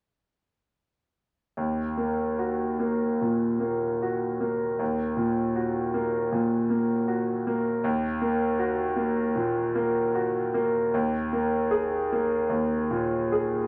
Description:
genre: classical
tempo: 67-80 BPM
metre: 4/4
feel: rubato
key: Eb minor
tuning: A4 = 440 Hz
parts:
  - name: bright grand piano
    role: accompaniment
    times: 1.6-13.7 s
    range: Eb2 to Ab4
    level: -26 LUFS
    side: equal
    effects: none
room: wet large studio reverb, RT60 1.2 s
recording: none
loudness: -27 LUFS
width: mono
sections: 1.6-13.7 A section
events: none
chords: 1.6 Ebm; 10.9 Ebsus4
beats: | 1.57 2.40 3.22 4.02 | 4.80 5.56 6.33 7.09 | 7.84 8.61 9.38 10.17 | 10.94 11.71 12.50 13.32

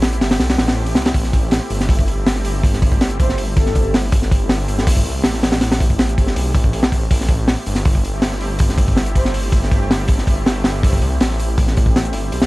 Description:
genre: drum and bass, jungle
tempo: 161 BPM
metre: 4/4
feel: straight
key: A minor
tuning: A4 = 445 Hz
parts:
  - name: lush unison pad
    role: sustained chords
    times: 0.0-12.5 s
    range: A3 to G4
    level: -27 LUFS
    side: right 1 dB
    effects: chorus
  - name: detuned saw bass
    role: bass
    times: 0.0-12.5 s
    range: G1 to C2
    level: -20 LUFS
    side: equal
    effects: none
  - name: crunchy breakbeat drum kit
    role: drums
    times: 0.0-12.5 s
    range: hi-hat, kick drum, snare drum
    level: -16 LUFS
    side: equal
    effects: none
  - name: breathy flute-like synth lead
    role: melody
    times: 3.2-3.9, 9.2-9.4 s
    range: A4 to C5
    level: -29 LUFS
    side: left 1 dB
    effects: wide subtle chorus, dub echo
room: studio reverb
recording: vinyl crackle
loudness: -14 LUFS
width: side -20 dB against mid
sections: 0.0-12.5 A section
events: kick drops out 0.4-1.1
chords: 0.0 Am7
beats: 0.03 0.40 0.77 | 1.14 1.52 1.89 2.26 | 2.63 3.01 3.38 3.75 | 4.12 4.50 4.87 5.24 | 5.62 5.99 6.36 6.73 | 7.11 7.48 7.85 8.22 | 8.60 8.97 9.34 9.71 | 10.09 10.46 10.83 11.21 | 11.58 11.95 12.32

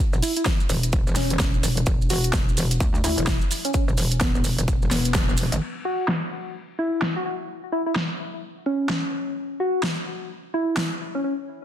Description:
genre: bass house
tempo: 128 BPM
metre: 4/4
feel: swing 60% on 16ths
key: unclear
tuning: A4 = 440 Hz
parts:
  - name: metallic wobble bass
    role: bass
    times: 0.1-5.6 s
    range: E1 to D2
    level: -24 LUFS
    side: equal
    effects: distortion, chorus, overdrive, sidechain pumping
  - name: maracas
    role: percussion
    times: 0.1-5.6 s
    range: none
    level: -33 LUFS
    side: right 4 dB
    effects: none
  - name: soft struck synth lead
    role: melody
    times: 0.2-11.3 s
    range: B3 to F#4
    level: -27 LUFS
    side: left 1 dB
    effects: chorus, phaser, ping-pong delay
  - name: big-room dance drum kit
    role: drums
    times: 0.2-10.9 s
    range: crash cymbal, hi-hat, snare drum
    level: -27 LUFS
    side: equal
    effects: overdrive, low-pass filter on hats, studio ambience, low-pass filter on snare, low-pass filter on cymbals
  - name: electronic kick drum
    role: drums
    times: 0.5-5.3 s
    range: none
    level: -22 LUFS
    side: equal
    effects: overdrive, studio ambience
room: light reverb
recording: dense, heavily limited modern master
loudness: -21 LUFS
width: side -10 dB against mid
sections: 0.0-5.6 A section; 5.6-11.6 B section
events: band accent 5.1; filter sweep on drum 5.6-11.6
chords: none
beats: 0.46 0.93 1.40 | 1.87 2.33 2.80 3.27 | 3.74 4.21 4.68 5.15 | 5.62 6.08 6.55 7.02 | 7.49 7.96 8.43 8.90 | 9.37 9.84 10.30 10.77 | 11.24

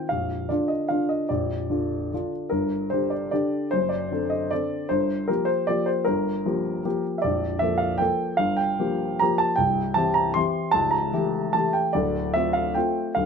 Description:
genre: classical, piano waltz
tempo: 152 BPM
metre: 3/4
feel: uneven beats, rubato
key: unclear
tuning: A4 = 441 Hz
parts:
  - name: warm baby grand piano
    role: solo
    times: 0.0-13.3 s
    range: Bb0 to C6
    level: -22 LUFS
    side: equal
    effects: none
room: light reverb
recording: minimal, uncompressed stereo recording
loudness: -22 LUFS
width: side -6 dB against mid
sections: 0.0-13.3 A section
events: none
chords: 0.1 Bb; 2.5 Gm; 3.7 D7/F#; 4.9 Gm7; 7.2 Bbmaj7; 8.4 Gm7; 9.6 C; 10.7 A7/C#; 11.9 Dm7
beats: | 0.11 0.49 0.90 | 1.30 1.70 2.12 | 2.51 2.90 3.31 | 3.71 4.11 4.51 | 4.90 5.28 5.69 | 6.08 6.45 6.85 | 7.23 7.61 8.00 | 8.39 8.79 9.20 | 9.59 9.97 10.36 | 10.75 11.13 11.54 | 11.95 12.35 12.76 | 13.16

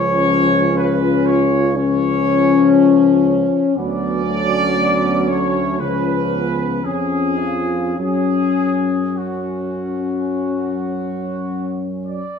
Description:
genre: classical, hymn-like piece for brass band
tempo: 50-61 BPM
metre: 4/4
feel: rubato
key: unclear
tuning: A4 = 439 Hz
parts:
  - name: dark trumpet section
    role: melody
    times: 0.0-12.4 s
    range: F#4 to D5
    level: -22 LUFS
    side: equal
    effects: none
  - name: mellow French horn section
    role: second line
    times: 0.0-12.0 s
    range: A3 to E#4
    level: -20 LUFS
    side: left 5 dB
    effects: none
  - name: mellow trombone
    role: accompaniment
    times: 0.0-12.2 s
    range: E#3 to F#3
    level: -24 LUFS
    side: right 7 dB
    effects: none
  - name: warm trombone section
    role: accompaniment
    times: 0.0-12.2 s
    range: C#4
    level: -23 LUFS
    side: left 4 dB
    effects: none
  - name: warm tuba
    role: bass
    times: 0.0-12.2 s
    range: C#2 to F#2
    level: -23 LUFS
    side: equal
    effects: none
room: moderate stone room reverb, RT60 1.0 s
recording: minimal, uncompressed stereo recording, faint mains hum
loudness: -15 LUFS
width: side -6 dB against mid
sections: 0.0-12.4 A section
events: none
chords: 0.0 C#; 3.8 Dmaj7; 5.8 C#7; 8.0 F#5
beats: 0.77 1.76 2.76 | 3.76 4.79 5.80 6.85 | 7.99 9.18 10.34 11.47

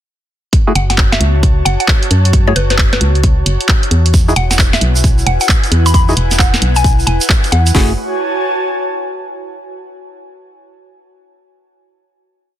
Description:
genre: UK garage, two-step garage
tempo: 133 BPM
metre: 4/4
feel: swing 64% on 16ths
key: F# minor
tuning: A4 = 442 Hz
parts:
  - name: house drum kit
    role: drums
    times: 0.5-7.9 s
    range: hi-hat, kick drum, snare drum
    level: -12 LUFS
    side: equal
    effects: none
  - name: punchy analog drum machine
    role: drums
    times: 0.5-7.7 s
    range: handclaps, hi-hat, snare drum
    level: -16 LUFS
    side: right 1 dB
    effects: none
  - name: airy breathy pad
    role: texture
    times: 0.5-9.5 s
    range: E4 to A5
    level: -21 LUFS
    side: equal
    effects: chorus, sidechain pumping
  - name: percussive organ stab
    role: stabs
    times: 0.7-7.9 s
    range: A3 to G#4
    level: -18 LUFS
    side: equal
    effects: chorus, cassette tape, digital delay
  - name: mallet-like synth pluck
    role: melody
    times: 0.8-7.7 s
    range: B4 to B5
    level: -19 LUFS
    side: left 1 dB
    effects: chorus, phaser, digital delay
  - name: organ-like FM bass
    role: bass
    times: 0.8-8.0 s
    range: E1 to F#2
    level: -13 LUFS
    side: equal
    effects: sidechain pumping
  - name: tube shaker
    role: percussion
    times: 4.1-7.7 s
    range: none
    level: -22 LUFS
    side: right 5 dB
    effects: none
room: little or no reverb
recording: dense, heavily limited modern master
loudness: -10 LUFS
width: side -12 dB against mid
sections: 0.5-7.7 drop; 7.7-9.6 final chord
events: drop 0.5-7.7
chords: 0.5 F#m7; 4.1 Eadd9; 7.7 F#m9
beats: | 0.53 0.98 1.43 1.88 | 2.33 2.79 3.24 3.69 | 4.14 4.59 5.04 5.49 | 5.94 6.39 6.84 7.30 | 7.75 8.20 8.65 9.10

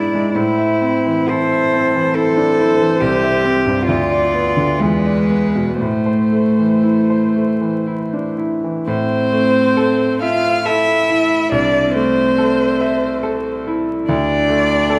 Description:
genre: classical, slow romantic movement for piano trio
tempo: 57-74 BPM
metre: 3/4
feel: rubato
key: A minor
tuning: A4 = 437 Hz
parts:
  - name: dark violin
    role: melody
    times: 0.0-15.0 s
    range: A4 to F5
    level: -22 LUFS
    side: equal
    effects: none
  - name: warm cello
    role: second line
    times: 0.0-15.0 s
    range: G#3 to C5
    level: -20 LUFS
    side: equal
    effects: none
  - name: bright grand piano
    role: accompaniment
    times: 0.0-15.0 s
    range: C2 to E5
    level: -21 LUFS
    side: equal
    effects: none
room: wet scoring stage reverb, RT60 2.0 s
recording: vinyl crackle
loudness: -16 LUFS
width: mono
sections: 0.0-8.9 A section; 8.9-15.0 B section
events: none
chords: 0.4 Am; 3.0 C; 3.9 Bdim/D; 4.8 E7; 5.8 Am; 11.5 Am/C; 14.1 D5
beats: | 0.36 1.30 2.16 | 3.01 3.88 4.80 | 5.81 6.83 7.87 | 8.87 9.77 10.65 | 11.52 12.38 13.24 | 14.09 14.90

